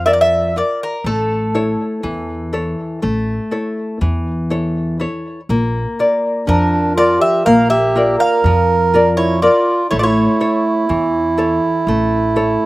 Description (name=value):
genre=greek folk, Greek bouzouki band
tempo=122 BPM (eighths)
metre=9/8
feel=straight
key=unclear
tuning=A4 = 439 Hz
part: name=Greek bouzouki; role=melody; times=0.0-12.7 s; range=A4 to F5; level=-18 LUFS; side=equal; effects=none
part: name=nylon-string guitar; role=accompaniment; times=0.0-12.7 s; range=E3 to D5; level=-18 LUFS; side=left 1 dB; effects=none
part: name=upright bass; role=bass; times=0.0-12.6 s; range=A1 to F2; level=-20 LUFS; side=equal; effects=none
part: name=mellow accordion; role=second line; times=6.5-12.7 s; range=D4 to Bb4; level=-16 LUFS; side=right 3 dB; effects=none
room=little or no reverb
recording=recorded outdoors, with no room sound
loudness=-13 LUFS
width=side -18 dB against mid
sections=0.0-5.5 A section; 5.5-12.7 B section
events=none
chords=0.0 Bb; 1.0 A; 5.5 Bb; 9.9 A